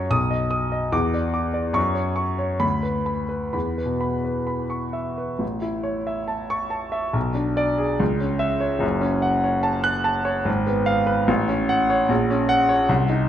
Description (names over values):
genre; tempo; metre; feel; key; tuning
classical, romantic character piece for solo piano; 63-76 BPM; 2/4; rubato; A major; A4 = 440 Hz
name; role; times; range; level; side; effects
clear grand piano; solo; 0.0-13.3 s; F#1 to F#6; -20 LUFS; equal; none
room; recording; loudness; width
wet recital hall reverb, RT60 1.6 s; none; -20 LUFS; side -10 dB against mid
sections
0.0-5.4 A section; 5.4-13.3 B section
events
none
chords
0.1 B; 0.9 Dsus2/E; 1.8 F#5; 2.6 Bm/D; 3.5 E5; 5.4 A; 7.2 G#dim/B; 8.0 C#m; 8.8 F#m; 10.5 Fdim/Ab; 11.3 F#m/A; 12.1 Gb/Bb